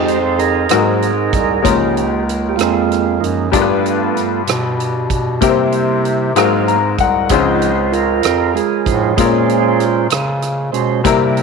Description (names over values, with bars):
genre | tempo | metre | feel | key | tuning
slow gospel | 64 BPM (dotted quarters) | 6/8 | straight | unclear | A4 = 437 Hz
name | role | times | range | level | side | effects
clear grand piano | accompaniment | 0.0-11.4 s | G2 to Bb5 | -17 LUFS | left 11 dB | none
tonewheel organ | sustained chords | 0.0-11.4 s | F3 to F5 | -17 LUFS | right 14 dB | fast rotary speaker
bright bass clarinet | bass | 0.0-11.4 s | C2 to Db3 | -19 LUFS | right 1 dB | none
swinging big-band drum kit | drums | 0.1-11.4 s | hi-hat, kick drum, rim click | -22 LUFS | right 4 dB | none
room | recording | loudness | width
moderate spring reverb, RT60 2.8 s | 1960s-style stereo with parts hard left and right | -13 LUFS | side -4 dB against mid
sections
0.0-11.4 A section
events
tonewheel organ solo 0.0-11.4; grand piano fill 6.4-7.3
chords
0.0 Fm7; 0.7 Ab9; 1.6 Db6; 3.5 G7; 5.4 C7; 6.4 Ab13; 7.3 Dbmaj7; 9.2 Bbm7